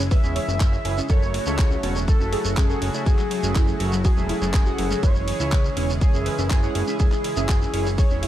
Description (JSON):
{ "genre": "progressive house", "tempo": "122 BPM", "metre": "4/4", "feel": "straight", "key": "F# minor", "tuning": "A4 = 440 Hz", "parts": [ { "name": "warm analog pad", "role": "sustained chords", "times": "0.0-8.3 s", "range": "C#3 to G#4", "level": "-32 LUFS", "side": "right 1 dB", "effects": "chorus, tremolo, sidechain pumping" }, { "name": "soft round pluck", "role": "arpeggios", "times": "0.0-8.3 s", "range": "F#3 to E5", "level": "-30 LUFS", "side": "equal", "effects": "analog chorus, vintage 12-bit sampler grit, sidechain pumping, dub echo" }, { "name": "fat analog bass", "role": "bass", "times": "0.0-8.3 s", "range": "E1 to C#2", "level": "-26 LUFS", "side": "equal", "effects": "tube saturation, sidechain pumping" }, { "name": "warm velvety synth lead", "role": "melody", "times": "0.1-8.3 s", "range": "G#4 to E5", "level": "-29 LUFS", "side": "left 1 dB", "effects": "chorus, vintage 12-bit sampler grit, dub echo" }, { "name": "electronic kick drum", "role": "drums", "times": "0.1-8.1 s", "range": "none", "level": "-19 LUFS", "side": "equal", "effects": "none" }, { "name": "house drum kit", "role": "drums", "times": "0.1-8.3 s", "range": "handclaps, hi-hat, ride cymbal", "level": "-34 LUFS", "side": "right 1 dB", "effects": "none" }, { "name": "shekere", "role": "percussion", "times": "0.1-8.2 s", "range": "none", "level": "-35 LUFS", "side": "right 1 dB", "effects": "none" }, { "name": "chorused polysynth", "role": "stabs", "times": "0.2-8.3 s", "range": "A3 to F#5", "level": "-32 LUFS", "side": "right 5 dB", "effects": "sidechain pumping, dub echo" } ], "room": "little or no reverb", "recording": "dark, warm production", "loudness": "-19 LUFS", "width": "side -12 dB against mid", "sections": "0.0-8.3 A section", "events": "none", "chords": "0.0 C#m; 1.1 F#m7; 5.0 C#m" }